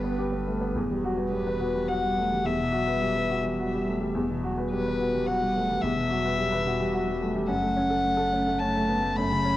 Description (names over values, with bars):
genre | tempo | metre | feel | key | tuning
neoclassical piano and strings | 107 BPM | 3/4 | rubato | E dorian | A4 = 439 Hz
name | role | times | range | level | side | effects
warm violin | melody | 0.0-9.6 s | B4 to B5 | -28 LUFS | left 2 dB | cassette tape, analog delay
dark cello | second line | 0.0-9.6 s | B2 to B3 | -36 LUFS | right 2 dB | cassette tape
warm upright piano | accompaniment | 0.0-9.6 s | E2 to B4 | -27 LUFS | equal | cassette tape
punchy sub bass | bass | 0.0-9.6 s | E1 to G1 | -37 LUFS | equal | none
room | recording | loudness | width
light reverb, small room ambience | home recording on cassette | -24 LUFS | side -14 dB against mid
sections
0.8-9.6 A section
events
none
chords
0.0 G; 0.8 Emadd9; 7.5 F#m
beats
0.18 | 0.75 1.32 1.89 | 2.45 3.02 3.58 | 4.14 4.70 5.26 | 5.82 6.38 6.93 | 7.49 8.05 8.61 | 9.17